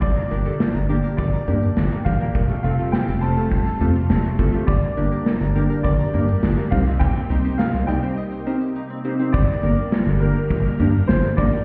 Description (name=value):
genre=synth-pop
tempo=103 BPM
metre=4/4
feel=straight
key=G minor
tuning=A4 = 440 Hz
part: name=warm baby grand piano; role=melody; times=0.0-11.6 s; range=Bb4 to A5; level=-31 LUFS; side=equal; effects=digital delay
part: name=phased string machine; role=sustained chords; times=0.0-11.6 s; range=Bb2 to Bb4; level=-30 LUFS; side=equal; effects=ensemble chorus, phaser
part: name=harpsichord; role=arpeggios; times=0.0-9.3 s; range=G3 to F6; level=-37 LUFS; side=equal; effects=digital delay
part: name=smooth gliding synth bass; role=bass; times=0.0-11.5 s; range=F1 to G2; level=-23 LUFS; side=equal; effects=none
part: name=gated 80s drum kit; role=drums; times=0.0-11.5 s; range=crash cymbal, hi-hat, kick drum, snare drum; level=-24 LUFS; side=equal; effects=none
part: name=funky polysynth comp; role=accompaniment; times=0.3-11.5 s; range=A3 to D5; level=-27 LUFS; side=equal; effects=chorus
room=little or no reverb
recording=heard muffled through a wall, stone room reverb, EQ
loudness=-20 LUFS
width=mono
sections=0.0-9.3 A section; 9.3-11.6 B section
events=break 8.2-9.3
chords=0.0 Gm; 2.4 Fadd9; 4.7 Gm; 6.7 Cm7; 9.3 Gm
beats=| 0.02 0.60 1.19 1.77 | 2.35 2.93 3.52 4.10 | 4.68 5.26 5.85 6.43 | 7.01 7.59 8.18 8.76 | 9.34 9.92 10.51 11.09